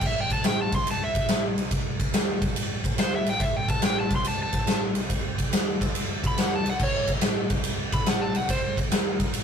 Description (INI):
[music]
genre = blues rock power trio and southern rock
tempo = 142 BPM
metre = 4/4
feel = swing 67% on 8ths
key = unclear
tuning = A4 = 440 Hz
[part]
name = overdriven slide guitar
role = melody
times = 0.0-8.8 s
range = C5 to C6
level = -28 LUFS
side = equal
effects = none
[part]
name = growling picked electric bass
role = bass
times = 0.0-9.4 s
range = A1 to E2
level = -36 LUFS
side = equal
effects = overdrive
[part]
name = big rock drum kit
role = drums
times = 0.0-9.4 s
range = crash cymbal, kick drum, ride cymbal, snare drum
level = -24 LUFS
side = equal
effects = none
[part]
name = overdriven tonewheel organ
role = sustained chords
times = 3.1-9.4 s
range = G3 to D#5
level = -42 LUFS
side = right 2 dB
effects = none
[sound]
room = light reverb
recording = rough rehearsal-room recording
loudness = -23 LUFS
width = side -7 dB against mid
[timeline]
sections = 0.0-9.4 A section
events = electric slide guitar solo 0.0-9.4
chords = 0.0 A7(no3); 0.7 C5; 1.1 A5; 1.5 N.C.; 2.6 A; 4.0 C5; 4.5 A; 4.9 C5; 5.5 N.C.; 5.7 D5; 6.2 A; 7.4 C5; 7.9 A; 8.3 C5; 8.9 D#5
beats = | 0.03 0.45 0.87 1.29 | 1.72 2.14 2.56 2.99 | 3.41 3.83 4.26 4.68 | 5.11 5.53 5.95 6.38 | 6.80 7.22 7.65 8.07 | 8.49 8.92 9.34